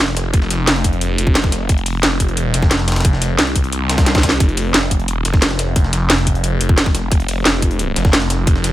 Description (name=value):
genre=dark technical drum and bass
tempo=177 BPM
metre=4/4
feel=straight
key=unclear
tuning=A4 = 441 Hz
part: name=phased detuned saw bass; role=bass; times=0.0-8.7 s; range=F1 to C2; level=-18 LUFS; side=equal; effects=phaser, overdrive
part: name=breakbeat sampler-style drum kit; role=drums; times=0.0-8.7 s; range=hi-hat, snare drum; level=-25 LUFS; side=left 1 dB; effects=high-pass filter on hats, high-pass filter on snare
part: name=drum and bass drum kit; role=drums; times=0.0-8.7 s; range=hi-hat, snare drum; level=-17 LUFS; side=equal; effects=none
part: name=electronic kick drum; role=drums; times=0.3-8.5 s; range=none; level=-14 LUFS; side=equal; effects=none
room=digital ambience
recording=none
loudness=-13 LUFS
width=side -14 dB against mid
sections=0.0-8.7 A section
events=drum fill 4.1-4.4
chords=none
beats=0.00 | 0.34 0.68 1.01 1.35 | 1.69 2.03 2.37 2.71 | 3.05 3.39 3.73 4.06 | 4.40 4.74 5.08 5.42 | 5.76 6.10 6.44 6.78 | 7.12 7.45 7.79 8.13 | 8.47